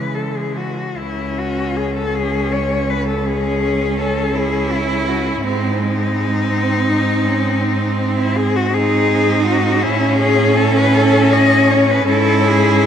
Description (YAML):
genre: classical, lyrical piece for cello ensemble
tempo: 46-57 BPM (dotted quarters)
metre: 12/8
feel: rubato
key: C# minor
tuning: A4 = 439 Hz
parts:
  - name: rich cello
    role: melody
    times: 0.0-12.9 s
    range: D#4 to D#5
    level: -19 LUFS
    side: left 4 dB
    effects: none
  - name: rich cello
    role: second line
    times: 0.0-12.9 s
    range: G#3 to E4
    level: -19 LUFS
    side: right 4 dB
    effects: none
  - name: warm cello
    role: accompaniment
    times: 0.0-12.9 s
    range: E3 to C#4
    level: -22 LUFS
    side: left 3 dB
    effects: none
  - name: rich cello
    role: bass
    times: 0.0-12.9 s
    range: C#2 to C#3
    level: -20 LUFS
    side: right 2 dB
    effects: none
room: wet huge ambient reverb, RT60 7.4 s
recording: in a vast, echoing space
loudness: -14 LUFS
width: side -8 dB against mid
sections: 1.0-12.9 A section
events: none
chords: 0.0 C#m; 5.4 G#; 9.8 A; 12.1 C#m/G#